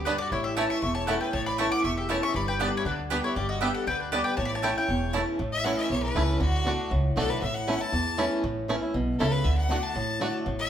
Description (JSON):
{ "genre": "bluegrass", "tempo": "236 BPM", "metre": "4/4", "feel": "straight", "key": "A mixolydian", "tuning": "A4 = 441 Hz", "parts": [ { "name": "mandolin", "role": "melody", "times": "0.0-5.1 s", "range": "B4 to D6", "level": "-30 LUFS", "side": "left 2 dB", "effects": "none" }, { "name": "bright fiddle", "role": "second line", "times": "0.0-10.7 s", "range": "D4 to A5", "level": "-32 LUFS", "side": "left 2 dB", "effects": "none" }, { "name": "picked swing-style acoustic guitar", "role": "accompaniment", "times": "0.0-10.7 s", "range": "E2 to G4", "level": "-30 LUFS", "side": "equal", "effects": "none" }, { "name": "upright bass", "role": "bass", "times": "0.0-10.7 s", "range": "E1 to E2", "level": "-30 LUFS", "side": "equal", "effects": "none" }, { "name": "bluegrass banjo", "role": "melody", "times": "0.1-10.3 s", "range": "A3 to G4", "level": "-33 LUFS", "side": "right 3 dB", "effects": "none" }, { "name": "mandolin", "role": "stabs", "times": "0.1-5.2 s", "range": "A3 to A5", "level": "-33 LUFS", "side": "right 4 dB", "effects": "none" } ], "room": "moderate large studio reverb, RT60 1.1 s", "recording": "band playing live in one room", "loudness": "-24 LUFS", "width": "side -9 dB against mid", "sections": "0.0-5.4 A section; 5.4-10.7 B section", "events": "fiddle solo 5.4-10.7", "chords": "0.3 A; 2.3 G; 4.4 A; 6.4 D; 7.4 A; 9.4 D" }